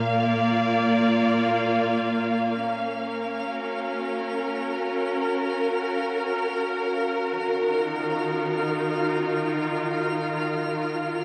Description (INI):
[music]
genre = ambient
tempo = free time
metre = none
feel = none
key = unclear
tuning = A4 = 437 Hz
[part]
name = muted studio string section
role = sustained chords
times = 0.0-11.2 s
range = Bb2 to F5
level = -26 LUFS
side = equal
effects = none
[part]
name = twinkling granular texture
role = texture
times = 0.1-11.2 s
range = F5 to F6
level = -38 LUFS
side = equal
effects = built-in reverb
[sound]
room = wet lush hall reverb, RT60 3.1 s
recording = cassette tape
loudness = -25 LUFS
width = mono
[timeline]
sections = 0.0-11.2 A section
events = fade-in on synth texture 0.0-11.2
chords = 0.0 Bb; 2.6 Gb; 7.3 Ebmadd9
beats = free time